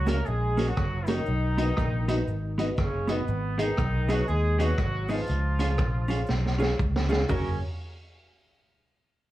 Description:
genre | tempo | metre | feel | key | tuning
ska | 120 BPM | 4/4 | swing 61% on 8ths | F# major | A4 = 441 Hz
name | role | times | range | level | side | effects
clear horn section | melody | 0.0-7.6 s | C#3 to A#4 | -32 LUFS | equal | none
fingered electric bass | bass | 0.0-7.6 s | F#1 to D#2 | -27 LUFS | equal | none
mellow electric guitar | accompaniment | 0.1-7.5 s | A#3 to A#4 | -33 LUFS | right 2 dB | none
dark upright piano | stabs | 0.1-7.5 s | F#4 to E#5 | -33 LUFS | left 1 dB | none
vintage drum kit | drums | 0.1-7.4 s | hi-hat, kick drum, rim click, snare drum, toms | -31 LUFS | equal | none
cabasa | percussion | 0.1-7.6 s | none | -61 LUFS | right 4 dB | none
room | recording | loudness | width
light reverb, small room reverb | cassette tape, small room ambience | -24 LUFS | side -15 dB against mid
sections
0.0-7.3 A section; 7.3-9.3 B section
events
drum fill 6.3-7.3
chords
0.0 F#; 1.3 B; 3.3 G#m; 5.3 C#; 7.3 F#

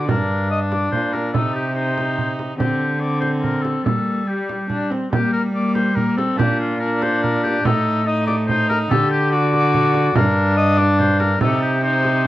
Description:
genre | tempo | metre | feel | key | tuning
classical, renaissance-style consort dance | 143 BPM | 3/4 | straight | G minor | A4 = 440 Hz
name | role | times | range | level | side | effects
clear oboe | melody | 0.0-12.3 s | F4 to Eb5 | -22 LUFS | left 2 dB | none
rich viola | accompaniment | 0.0-12.3 s | G3 to G4 | -22 LUFS | left 1 dB | none
rich cello | bass | 0.0-12.3 s | G2 to G3 | -21 LUFS | right 1 dB | none
frame drum | percussion | 0.1-12.2 s | none | -23 LUFS | right 3 dB | none
room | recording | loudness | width
light reverb | worn, warbling old tape, cassette tape, warbly pitch drift | -16 LUFS | side -15 dB against mid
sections
0.0-5.1 A section; 5.1-12.3 A section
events
none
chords
0.1 Gm; 1.3 Cm; 2.6 D7sus4; 3.9 Gm; 6.4 Bb; 7.6 A(b5, no3); 8.9 Dsus4; 9.3 D; 10.2 Gm; 11.4 Cm

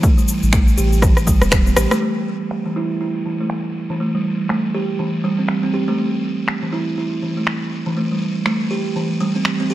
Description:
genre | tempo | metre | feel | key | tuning
afro house | 121 BPM | 4/4 | swing 59% on 16ths | A minor | A4 = 440 Hz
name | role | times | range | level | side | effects
buzzing kalimba | arpeggios | 0.0-9.7 s | E3 to G4 | -19 LUFS | right 1 dB | sidechain pumping, low-pass filter, digital delay
electronic cabasa, finger snaps and rim click | drums | 0.0-9.7 s | none | -21 LUFS | left 1 dB | overdrive, low-pass filter on perc, low-pass filter on snare
electronic kick drum | drums | 0.0-1.6 s | none | -15 LUFS | equal | overdrive
warm sub bass | bass | 0.4-1.9 s | E1 to A1 | -18 LUFS | equal | sidechain pumping
room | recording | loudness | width
light reverb | lossy compression artefacts | -17 LUFS | side -14 dB against mid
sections
0.0-2.0 A section; 2.0-9.7 B section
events
drum fill 1.0-2.0; filter sweep on drum 2.0-9.7; filter sweep on kalimba 2.0-9.7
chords
0.0 Em/A; 2.0 A7(no3)

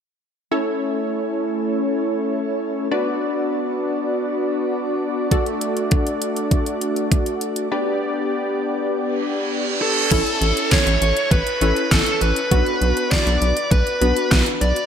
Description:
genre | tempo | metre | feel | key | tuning
synth-pop | 100 BPM | 4/4 | straight | A mixolydian | A4 = 439 Hz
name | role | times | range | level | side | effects
funky polysynth comp | accompaniment | 0.5-14.8 s | B3 to D5 | -23 LUFS | left 1 dB | chorus, shimmer reverb
brassy analog pad | sustained chords | 0.5-10.1 s | A3 to D5 | -25 LUFS | equal | chorus, shimmer reverb
pop drum kit | drums | 5.3-14.9 s | crash cymbal, hi-hat, kick drum, snare drum | -20 LUFS | equal | overdrive, gated reverb
reverse cymbal and downlifter | sound effects | 9.2-14.9 s | none | -26 LUFS | right 3 dB | none
bluesy overdriven lead guitar | melody | 9.8-14.9 s | A4 to D5 | -21 LUFS | equal | distortion, shimmer reverb
rubbery square bass | bass | 10.1-14.7 s | A1 to B1 | -20 LUFS | equal | none
room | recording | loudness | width
moderate plate reverb, RT60 2.7 s | bright 1980s-style digital production | -18 LUFS | side -8 dB against mid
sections
0.5-10.1 A section; 10.1-14.9 B section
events
reverse cymbal 9.2-10.1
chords
0.5 A; 2.9 Bm; 5.3 D; 7.7 G; 10.1 A; 12.5 Bm

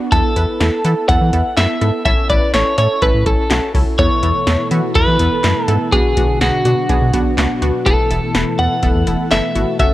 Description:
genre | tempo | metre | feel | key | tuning
synth-pop | 124 BPM | 4/4 | straight | unclear | A4 = 439 Hz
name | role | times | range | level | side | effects
analog pluck | accompaniment | 0.0-9.9 s | B3 to B4 | -20 LUFS | right 1 dB | chorus
twelve-string electric guitar | melody | 0.1-9.9 s | F#4 to F#5 | -18 LUFS | equal | none
round analog bass | bass | 0.1-9.9 s | E1 to E3 | -17 LUFS | equal | none
electro analog drum machine | drums | 0.1-9.9 s | handclaps, hi-hat, kick drum, snare drum | -18 LUFS | equal | none
ensemble organ-string | sustained chords | 4.0-9.9 s | B2 to A4 | -23 LUFS | left 1 dB | ensemble chorus
room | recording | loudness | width
light reverb | worn, warbling old tape, cassette tape, warbly pitch drift | -13 LUFS | side -15 dB against mid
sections
0.0-9.9 A section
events
none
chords
0.1 Esus4; 2.1 A; 4.0 Esus4; 5.9 Bm; 7.9 Esus4

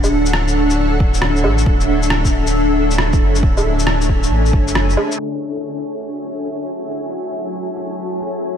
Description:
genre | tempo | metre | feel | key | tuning
future garage | 136 BPM | 4/4 | swing 65% on 16ths | F# minor | A4 = 436 Hz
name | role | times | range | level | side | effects
granular cloud pad | sustained chords | 0.0-8.6 s | D4 to A5 | -19 LUFS | left 1 dB | built-in reverb, ensemble chorus, sidechain pumping
warm sub bass | bass | 0.0-5.0 s | D1 to A1 | -18 LUFS | equal | tube saturation, sidechain pumping
electronic shaker, woodblock and rim click | drums | 0.0-8.5 s | none | -22 LUFS | equal | overdrive
electronic kick drum | drums | 1.0-4.6 s | none | -17 LUFS | equal | overdrive
room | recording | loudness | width
moderate huge ambient reverb, RT60 4.6 s | dreamy mix soaked in reverb, low-pass filter | -15 LUFS | side -8 dB against mid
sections
0.0-5.2 A section; 5.2-8.6 B section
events
filter sweep 5.2-8.6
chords
0.0 Dmaj7; 5.2 F#m7

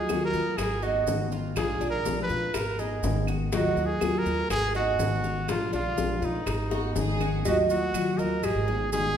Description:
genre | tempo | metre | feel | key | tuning
latin, Cuban son and guajira | 122 BPM | 4/4 | straight | Eb harmonic minor | A4 = 439 Hz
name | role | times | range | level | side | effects
warm trumpet | melody | 0.0-9.2 s | Eb4 to Cb5 | -30 LUFS | right 1 dB | none
nylon-string guitar | accompaniment | 0.0-9.2 s | Eb3 to Ab4 | -30 LUFS | left 3 dB | none
Cuban tres | arpeggios | 0.0-9.2 s | D4 to Eb5 | -32 LUFS | right 7 dB | none
upright bass | bass | 0.0-9.2 s | Ab1 to Eb3 | -32 LUFS | equal | none
bongos and cowbell | percussion | 0.1-9.2 s | none | -34 LUFS | left 3 dB | none
claves | percussion | 0.1-8.7 s | none | -44 LUFS | right 3 dB | none
maracas | percussion | 0.1-9.2 s | none | -43 LUFS | right 5 dB | none
warm studio violin section | second line | 6.7-7.4 s | Gb4 to Ab4 | -35 LUFS | right 1 dB | none
room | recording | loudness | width
wet recital hall reverb, RT60 1.6 s | recorded in a church or concert hall, faint mains hum | -24 LUFS | side -9 dB against mid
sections
0.0-7.5 A section; 7.5-9.2 B section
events
drum fill 6.7-7.5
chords
0.0 Ebmadd9; 0.6 Abm; 1.6 Bb7; 2.5 Abm; 3.5 Ebmadd9; 4.5 Abm; 5.5 Bb7; 6.5 Abm; 7.5 Ebmadd9; 8.4 Abm

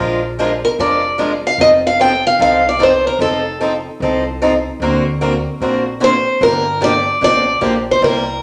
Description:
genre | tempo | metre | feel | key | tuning
acoustic string swing (jazz manouche) | 149 BPM | 4/4 | swing 64% on 8ths | F mixolydian | A4 = 439 Hz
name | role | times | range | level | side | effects
picked swing-style acoustic guitar | accompaniment | 0.0-8.2 s | C3 to Bb4 | -20 LUFS | equal | none
upright bass | bass | 0.0-8.4 s | F1 to D2 | -28 LUFS | equal | none
picked steel-string acoustic guitar | melody | 0.6-3.6, 6.0-8.4 s | A4 to G5 | -15 LUFS | equal | none
room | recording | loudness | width
wet large studio reverb, RT60 0.9 s | none | -15 LUFS | mono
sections
0.0-8.4 A section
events
none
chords
0.0 Bb7; 1.6 F7; 4.8 Daug7; 6.4 Gm7

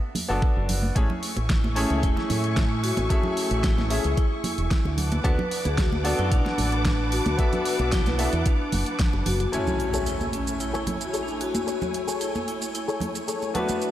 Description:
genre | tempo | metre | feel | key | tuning
nu-disco, nu disco | 112 BPM | 4/4 | straight | A major | A4 = 440 Hz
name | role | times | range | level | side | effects
congas and cabasa | percussion | 0.1-13.9 s | none | -33 LUFS | right 2 dB | none
pop drum kit | drums | 0.2-13.9 s | hi-hat, shaker, snare drum | -32 LUFS | right 1 dB | overdrive
bright concert grand piano | accompaniment | 0.3-13.9 s | A3 to G#5 | -31 LUFS | equal | sidechain pumping, analog delay
fingered electric bass with an envelope filter | bass | 0.3-9.5 s | E1 to A2 | -26 LUFS | equal | none
electronic kick drum | drums | 0.4-9.1 s | none | -23 LUFS | equal | overdrive
dark studio string section | sustained chords | 1.0-13.9 s | A3 to D6 | -32 LUFS | equal | sidechain pumping
vibraphone with hard mallets | melody | 1.5-13.9 s | C#4 to B4 | -30 LUFS | left 2 dB | tape echo
direct-recorded clean electric guitar | riff | 9.5-13.9 s | F#4 to D5 | -33 LUFS | left 4 dB | ensemble chorus, low-pass filter, analog delay
impact | sound effects | 9.5-11.7 s | none | -32 LUFS | equal | none
room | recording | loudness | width
moderate lush hall reverb, RT60 2.4 s | dreamy mix soaked in reverb | -22 LUFS | side -12 dB against mid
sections
0.0-9.5 A section; 9.5-13.9 B section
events
impact 9.5-11.7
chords
0.0 Bm7; 1.0 Amaj7; 5.0 D6; 7.4 Bm7; 9.5 Amaj7

